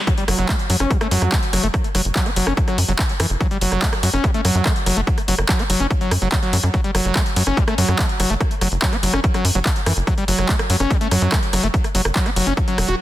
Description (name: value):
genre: psychedelic trance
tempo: 144 BPM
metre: 4/4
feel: straight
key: F# phrygian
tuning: A4 = 440 Hz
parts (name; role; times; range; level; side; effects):
- screaming distorted acid line; riff; 0.1-12.9 s; E3 to F#4; -22 LUFS; equal; distortion, chorus, auto-pan, sidechain pumping, digital delay
- electronic kick drum; drums; 0.1-12.7 s; none; -20 LUFS; equal; overdrive
- techno drum kit; drums; 0.1-13.0 s; handclaps, hi-hat, rim click; -23 LUFS; equal; overdrive
- tight sequencer bass; bass; 0.3-12.9 s; E1 to F#2; -20 LUFS; equal; none
room: light reverb, digital ambience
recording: dense, heavily limited modern master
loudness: -16 LUFS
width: side -14 dB against mid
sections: 0.0-13.0 A section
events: none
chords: 0.0 F#5